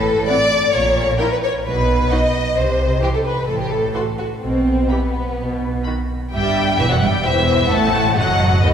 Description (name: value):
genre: quick classical-period movement for string orchestra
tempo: 131 BPM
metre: 4/4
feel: straight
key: E minor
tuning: A4 = 440 Hz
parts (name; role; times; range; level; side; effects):
- warm studio violin section; second line; 0.0-8.7 s; B3 to F#5; -19 LUFS; left 1 dB; none
- dark chamber double bass section; bass; 0.0-8.7 s; E1 to D#2; -22 LUFS; right 1 dB; none
- warm chamber cello section; bass; 0.0-8.7 s; D#2 to C3; -24 LUFS; right 3 dB; none
- rich chamber violin section; melody; 0.3-8.7 s; D#5 to C6; -22 LUFS; left 3 dB; none
- rich studio viola section; accompaniment; 0.3-8.7 s; D#3 to G4; -26 LUFS; right 2 dB; none
room: wet church reverb, RT60 3.1 s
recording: recorded in a church or concert hall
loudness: -15 LUFS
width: side -8 dB against mid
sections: 0.0-6.3 A section; 6.3-8.7 B section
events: none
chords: 0.0 N.C.; 0.7 A#m; 1.7 B; 2.6 N.C.; 6.3 Em/G; 7.3 F#m7b5/E; 8.2 B/F# (rootless)